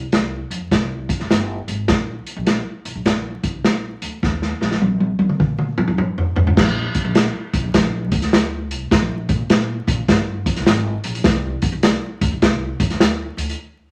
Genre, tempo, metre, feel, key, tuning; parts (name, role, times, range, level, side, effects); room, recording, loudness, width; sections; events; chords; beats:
uptempo 1960s-style soul; 102 BPM; 4/4; swing 65% on 8ths; Bb mixolydian; A4 = 440 Hz
upright bass; bass; 0.0-13.5 s; F1 to Eb3; -28 LUFS; equal
vintage drum kit; drums; 0.1-13.6 s; crash cymbal, hi-hat, kick drum, snare drum, toms; -19 LUFS; equal
wet studio reverb, RT60 0.7 s; vinyl crackle; -19 LUFS; mono
0.0-6.6 A section; 6.6-13.9 B section
drum fill 4.2-6.6; band accent 13.6-13.9
0.12 0.71 1.30 | 1.88 2.47 3.06 3.64 | 4.23 4.82 5.40 5.99 | 6.58 7.16 7.75 8.33 | 8.91 9.50 10.08 10.67 | 11.25 11.84 12.42 13.01